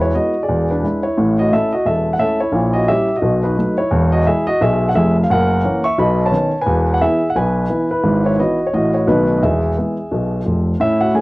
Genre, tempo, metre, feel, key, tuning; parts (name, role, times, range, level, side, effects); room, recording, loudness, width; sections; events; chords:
jazz, stride piano; 175 BPM; 4/4; swing 59% on 8ths; E major; A4 = 437 Hz
warm grand piano; solo; 0.0-11.2 s; E1 to C#6; -14 LUFS; equal
light reverb; home recording on cassette; -14 LUFS; side -21 dB against mid
0.0-10.8 A section
0.5 E7; 1.2 A; 2.5 A#dim7; 3.2 B7; 3.9 E; 5.3 F#7; 6.0 B9; 6.7 E; 8.0 E/G#; 8.7 A; 9.1 B7; 9.4 E